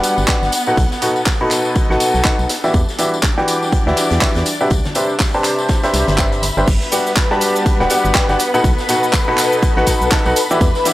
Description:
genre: piano house.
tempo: 122 BPM.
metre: 4/4.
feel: swing 58% on 16ths.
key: G major.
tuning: A4 = 441 Hz.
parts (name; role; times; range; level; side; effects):
bright grand piano; riff; 0.0-10.9 s; B2 to B5; -17 LUFS; equal; vintage 12-bit sampler grit, sidechain pumping, low-pass filter, analog delay.
house drum kit; drums; 0.0-10.9 s; crash cymbal, handclaps, hi-hat, shaker; -21 LUFS; right 1 dB; none.
oversized low-tuned drum kit; drums; 0.0-10.9 s; hi-hat, snare drum; -30 LUFS; left 1 dB; none.
tambourine and congas; percussion; 0.0-10.9 s; none; -26 LUFS; left 4 dB; none.
rich studio string section; texture; 0.0-10.9 s; G3 to B5; -25 LUFS; left 1 dB; sidechain pumping.
organ-like FM bass; bass; 0.2-10.7 s; D1 to E2; -19 LUFS; equal; sidechain pumping.
electronic kick drum; drums; 0.3-10.7 s; none; -17 LUFS; equal; none.
analog string pad; sustained chords; 6.7-10.9 s; B4 to B5; -21 LUFS; left 3 dB; ensemble chorus, sidechain pumping.
room: small room ambience.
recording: none.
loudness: -13 LUFS.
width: side -16 dB against mid.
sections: 0.0-6.7 A section; 6.7-10.9 B section.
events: drop 6.7-10.9.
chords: 0.0 Gmaj7; 0.5 B7; 2.5 Em9; 4.7 Cmaj9; 6.7 Gmaj7; 8.4 B7; 10.4 Em9.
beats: 0.28 | 0.77 1.26 1.76 2.25 | 2.74 3.23 3.72 4.22 | 4.71 5.20 5.69 6.18 | 6.67 7.17 7.66 8.15 | 8.64 9.13 9.63 10.12 | 10.61.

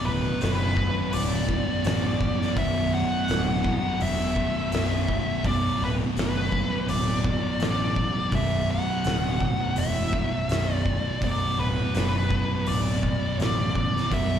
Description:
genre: stoner and doom metal.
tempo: 83 BPM.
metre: 4/4.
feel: straight.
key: B minor.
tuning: A4 = 440 Hz.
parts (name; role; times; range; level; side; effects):
fuzz lead guitar; melody; 0.0-14.4 s; B4 to F#5; -29 LUFS; left 1 dB; wah, distortion, slapback echo, tape echo.
thick fuzz guitar; riff; 0.0-14.4 s; B1 to B2; -29 LUFS; left 6 dB; distortion.
thick fuzz guitar; riff; 0.0-14.4 s; B1 to B2; -30 LUFS; right 8 dB; distortion.
fuzz picked electric bass; bass; 0.1-14.4 s; B0 to A1; -29 LUFS; equal; overdrive.
oversized low-tuned drum kit; drums; 0.4-14.3 s; hi-hat, kick drum, snare drum; -30 LUFS; equal; none.
room: studio reverb.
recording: live gig heard through the venue's PA, club reverb.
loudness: -22 LUFS.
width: side -9 dB against mid.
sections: 0.0-14.4 A section.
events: none.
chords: 0.0 Bm.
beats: 0.41 1.13 1.85 | 2.57 3.29 4.01 4.73 | 5.45 6.17 6.89 7.61 | 8.33 9.05 9.78 10.50 | 11.22 11.95 12.67 13.39 | 14.11.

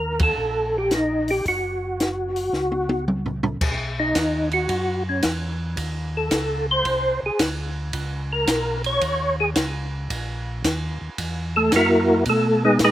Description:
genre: soul jazz organ trio.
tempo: 111 BPM.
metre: 4/4.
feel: swing 68% on 8ths.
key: B major from 3.6 s.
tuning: A4 = 439 Hz.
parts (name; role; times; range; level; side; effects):
percussive tonewheel organ; melody; 0.0-12.9 s; G#3 to C#5; -20 LUFS; equal; slow rotary speaker, chorus vibrato, slapback echo.
mellow tonewheel organ; bass; 0.0-12.9 s; Gb1 to B2; -28 LUFS; equal; slow rotary speaker.
compact cocktail drum kit; drums; 0.2-12.9 s; crash cymbal, hi-hat, kick drum, ride cymbal, snare drum, toms; -26 LUFS; equal; none.
room: little or no reverb.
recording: recorded outdoors, with no room sound.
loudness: -20 LUFS.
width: side -13 dB against mid.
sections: 0.0-3.6 A section; 3.6-12.9 B section.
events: band accent 0.1; drum fill 2.5-3.6; tonewheel organ solo 3.6-12.9.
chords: 0.0 Eb5; 1.5 Gb5; 3.6 B; 5.8 Adim; 6.9 Csus2; 7.9 C#sus2; 10.1 F#6; 12.3 B6.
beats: 0.37 0.91 | 1.45 1.99 2.53 3.07 | 3.61 4.16 4.70 5.24 | 5.78 6.32 6.86 7.40 | 7.94 8.48 9.02 9.56 | 10.10 10.64 11.18 11.72 | 12.26 12.80.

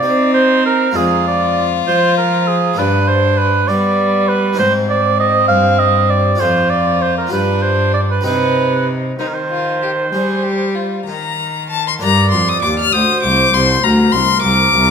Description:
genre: classical, baroque-style sonata movement with continuo.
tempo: 66 BPM (dotted quarters).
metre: 12/8.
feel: straight.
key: C minor.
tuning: A4 = 440 Hz.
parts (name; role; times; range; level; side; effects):
warm violin; melody; 0.0-14.9 s; B3 to F6; -18 LUFS; left 8 dB; none.
clear oboe; second line; 0.0-14.9 s; Ab4 to F5; -16 LUFS; right 4 dB; none.
harpsichord; accompaniment; 0.0-14.9 s; C2 to Bb4; -23 LUFS; left 2 dB; none.
clear cello; bass; 0.0-14.9 s; C2 to C4; -18 LUFS; right 1 dB; none.
room: wet recital hall reverb, RT60 1.4 s.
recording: none.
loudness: -12 LUFS.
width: side -6 dB against mid.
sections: 0.0-12.0 A section; 12.0-14.9 A section.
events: none.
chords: 0.0 Cm; 1.0 Ddim/F; 2.8 G; 4.6 Ab; 6.4 Ddim/F; 7.3 G5; 8.3 Cm; 12.0 Gm.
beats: 0.03 | 0.95 1.88 2.78 3.68 | 4.59 5.49 6.40 7.32 | 8.25 9.20 10.13 11.08 | 12.02 12.93 13.83 14.73.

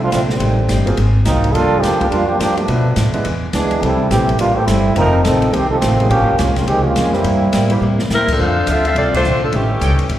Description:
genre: jazz, big band swing.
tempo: 210 BPM.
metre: 4/4.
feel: swing 62% on 8ths.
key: F major.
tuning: A4 = 440 Hz.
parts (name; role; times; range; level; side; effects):
warm trombone section; second line; 0.0-8.1 s; Eb3 to Bb4; -16 LUFS; right 2 dB; slapback echo.
picked steel-string acoustic guitar; accompaniment; 0.0-10.2 s; F2 to A4; -24 LUFS; left 4 dB; none.
upright bass; bass; 0.0-10.2 s; F1 to B2; -17 LUFS; equal; none.
open jazz drum kit; drums; 0.1-10.2 s; crash cymbal, hi-hat, kick drum, ride cymbal, snare drum; -25 LUFS; left 1 dB; none.
warm grand piano; accompaniment; 0.9-9.7 s; D3 to B4; -24 LUFS; right 2 dB; slapback echo.
warm saxophone section; melody; 8.1-10.1 s; E3 to E5; -16 LUFS; left 1 dB; slapback echo.
warm trumpet section; stabs; 8.4-9.9 s; D4 to G5; -22 LUFS; equal; slapback echo.
room: light reverb, small room ambience.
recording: live gig heard through the venue's PA, recital hall reverb.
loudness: -13 LUFS.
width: side -12 dB against mid.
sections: 0.0-8.4 A section; 8.4-10.2 B section.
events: trombone section solo 0.0-8.4; drum fill 7.8-8.4; band accent 8.2, 9.1.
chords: 0.4 Am7b5; 1.0 Ab13; 1.5 Gm7; 2.7 Bm7b5; 3.3 E7; 3.8 Am7; 5.0 F7; 6.1 Bbm7; 7.2 C7; 8.4 F6; 9.5 A7#11.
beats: 0.12 | 0.40 0.69 0.97 1.26 | 1.54 1.83 2.11 2.40 | 2.68 2.97 3.25 3.54 | 3.82 4.11 4.39 4.68 | 4.96 5.25 5.54 5.82 | 6.11 6.39 6.67 6.96 | 7.25 7.53 7.82 8.10 | 8.39 8.67 8.96 9.24 | 9.53 9.81 10.10.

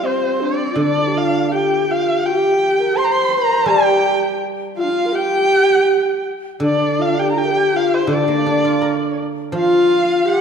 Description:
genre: chinese traditional, Chinese chamber ensemble.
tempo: 82 BPM.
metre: 2/4.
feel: rubato.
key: G yu mode.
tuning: A4 = 441 Hz.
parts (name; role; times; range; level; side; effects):
dark erhu; melody; 0.0-10.4 s; C5 to C6; -20 LUFS; right 1 dB; none.
dark horsehead fiddle; second line; 0.0-10.4 s; C4 to C5; -20 LUFS; right 2 dB; none.
low xiao; second line; 0.0-10.4 s; D4 to C5; -20 LUFS; left 5 dB; none.
guzheng; accompaniment; 0.0-10.4 s; D3 to Bb4; -22 LUFS; right 1 dB; none.
room: wet scoring stage reverb, RT60 2.1 s.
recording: dark, warm production.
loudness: -14 LUFS.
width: side -7 dB against mid.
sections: 0.0-6.6 A section; 6.6-10.4 B section.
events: none.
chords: none.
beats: 0.03 | 0.77 1.51 | 2.24 2.96 | 3.68 4.40 | 5.13 5.87 | 6.62 7.37 | 8.10 8.82 | 9.54 10.26.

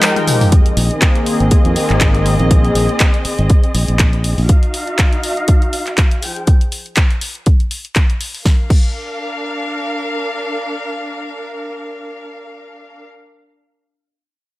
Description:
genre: nu-disco, nu disco.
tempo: 121 BPM.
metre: 4/4.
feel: swing 56% on 16ths.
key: Bb mixolydian.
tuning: A4 = 437 Hz.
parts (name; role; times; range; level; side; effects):
warm analog pad; accompaniment; 0.0-2.8 s; Eb3 to Bb4; -18 LUFS; left 1 dB; chorus, sidechain pumping, analog delay.
dark chamber string section; sustained chords; 0.0-13.1 s; F3 to G5; -23 LUFS; equal; sidechain pumping, low-pass filter.
house drum kit; drums; 0.0-8.9 s; crash cymbal, handclaps, hi-hat, snare drum, tambourine, toms; -19 LUFS; equal; none.
electronic kick drum; drums; 0.5-8.9 s; none; -12 LUFS; equal; none.
modern bright fingered electric bass; bass; 0.8-4.5 s; Ab1 to F2; -15 LUFS; equal; none.
room: digital ambience.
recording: none.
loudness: -12 LUFS.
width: side -18 dB against mid.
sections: 0.5-8.5 A section; 8.5-12.4 B section.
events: break 0.0-0.5; drum fill 0.1-0.5.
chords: 0.0 Fm9; 0.5 Bb9sus4; 4.5 Ebmadd9; 6.2 Fm9; 8.5 Bb.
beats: 0.03 | 0.52 1.02 1.51 2.01 | 2.50 3.00 3.50 3.99 | 4.49 4.98 5.48 5.98 | 6.47 6.97 7.46 7.96 | 8.46 8.95 9.45 9.94 | 10.44 10.94 11.43 11.93.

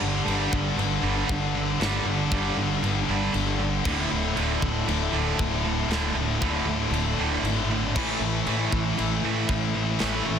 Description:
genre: heavy metal.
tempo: 117 BPM.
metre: 4/4.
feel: straight.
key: unclear.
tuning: A4 = 439 Hz.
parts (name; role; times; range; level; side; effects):
heavy high-gain guitar; riff; 0.0-10.4 s; D2 to A3; -28 LUFS; equal; distortion.
high-gain distorted guitar; riff; 0.0-10.4 s; D2 to A3; -28 LUFS; right 8 dB; distortion.
tight distorted guitar; riff; 0.0-10.4 s; D2 to E3; -30 LUFS; left 10 dB; distortion.
upright bass; bass; 0.0-10.4 s; D1 to A1; -30 LUFS; equal; none.
tight metal drum kit; drums; 0.3-10.1 s; china cymbal, crash cymbal, kick drum, snare drum; -32 LUFS; left 1 dB; none.
room: studio ambience.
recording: dense, heavily limited modern master.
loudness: -23 LUFS.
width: side -8 dB against mid.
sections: 0.0-10.4 A section.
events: half time 0.0-10.4.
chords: 0.0 G5; 3.9 D5; 8.0 A5.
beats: 0.27 0.78 1.29 | 1.81 2.32 2.83 3.34 | 3.85 4.37 4.88 5.39 | 5.90 6.41 6.93 7.44 | 7.95 8.46 8.98 9.49 | 10.00.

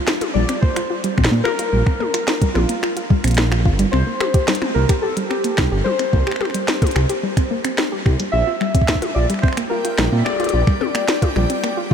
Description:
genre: IDM.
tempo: 109 BPM.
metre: 4/4.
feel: straight.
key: Bb lydian.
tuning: A4 = 440 Hz.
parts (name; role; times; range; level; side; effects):
warbly lo-fi synth keys; melody; 0.0-11.9 s; F4 to E5; -23 LUFS; left 1 dB; chorus, diffuse ambient delay.
soft round pluck; arpeggios; 0.1-11.9 s; G3 to G4; -23 LUFS; left 2 dB; chorus, ping-pong delay.
glitchy drum kit; drums; 0.1-11.7 s; finger snaps, hi-hat, snare drum, toms; -23 LUFS; left 1 dB; studio reverb, diffuse ambient delay.
dark detuned saw bass; bass; 0.3-11.5 s; G1 to Bb2; -18 LUFS; right 1 dB; none.
electronic kick drum; drums; 0.6-11.9 s; none; -16 LUFS; right 1 dB; studio reverb.
backwards swelling texture; texture; 9.6-11.9 s; G4 to G5; -31 LUFS; right 2 dB; built-in reverb.
room: moderate huge ambient reverb, RT60 7.0 s.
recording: dreamy mix soaked in reverb.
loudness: -16 LUFS.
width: side -8 dB against mid.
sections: 0.0-11.9 A section.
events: none.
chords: 0.0 Bbsus2; 3.9 C5; 8.3 Bb69.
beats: 0.08 0.63 1.18 | 1.73 2.28 2.83 3.38 | 3.93 4.48 5.03 5.58 | 6.13 6.68 7.23 7.78 | 8.33 8.88 9.43 9.98 | 10.54 11.09 11.64.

